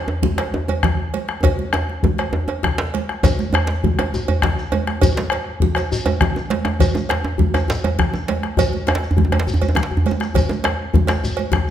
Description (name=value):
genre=west african traditional, West African drum ensemble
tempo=135 BPM (dotted quarters)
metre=12/8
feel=straight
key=none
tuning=none
part: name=bombo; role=percussion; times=0.1-11.7 s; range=none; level=-22 LUFS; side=left 3 dB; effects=none
part: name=djembe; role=percussion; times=0.1-11.2 s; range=none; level=-22 LUFS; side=right 1 dB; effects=none
part: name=congas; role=percussion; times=0.2-11.7 s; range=none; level=-25 LUFS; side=right 7 dB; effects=none
part: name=djembe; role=percussion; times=0.2-11.7 s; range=none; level=-24 LUFS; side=left 4 dB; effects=none
part: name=cowbell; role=percussion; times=0.4-11.5 s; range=none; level=-26 LUFS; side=right 7 dB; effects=none
part: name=shekere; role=percussion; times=3.2-11.7 s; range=none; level=-30 LUFS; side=left 1 dB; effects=none
room=wet recital hall reverb, RT60 1.3 s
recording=none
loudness=-17 LUFS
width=side -10 dB against mid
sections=0.0-3.2 A section; 3.2-11.7 B section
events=drum fill 1.4-3.2, 9.6-10.4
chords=none